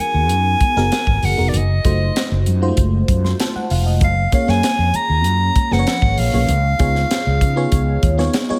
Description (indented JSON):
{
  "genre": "polished 1980s jazz-funk pop",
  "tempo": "97 BPM",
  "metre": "4/4",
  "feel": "straight",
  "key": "unclear",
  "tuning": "A4 = 439 Hz",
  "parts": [
    { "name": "breathy soprano saxophone", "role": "melody", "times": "0.0-8.3 s", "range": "D5 to A#5", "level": "-23 LUFS", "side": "equal", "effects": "tape echo" },
    { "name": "FM electric piano with soft pad layer", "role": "accompaniment", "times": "0.0-8.6 s", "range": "E#3 to C6", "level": "-25 LUFS", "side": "equal", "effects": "phaser, subtle chorus" },
    { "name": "fretless electric bass", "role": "bass", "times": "0.1-8.3 s", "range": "E#1 to C#3", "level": "-20 LUFS", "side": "equal", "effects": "none" },
    { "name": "tight funk drum kit", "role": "drums", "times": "0.3-8.5 s", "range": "hi-hat, kick drum, snare drum", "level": "-22 LUFS", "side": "equal", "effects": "gated reverb" },
    { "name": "congas", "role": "percussion", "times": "0.3-8.6 s", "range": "none", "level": "-34 LUFS", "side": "equal", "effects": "none" }
  ],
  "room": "small room ambience",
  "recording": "none",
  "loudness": "-17 LUFS",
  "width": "mono",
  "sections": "0.0-8.6 A section",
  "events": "none",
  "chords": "0.0 G#m9; 1.5 F7b9/Gb; 4.0 A#m7/F#; 6.5 C#9"
}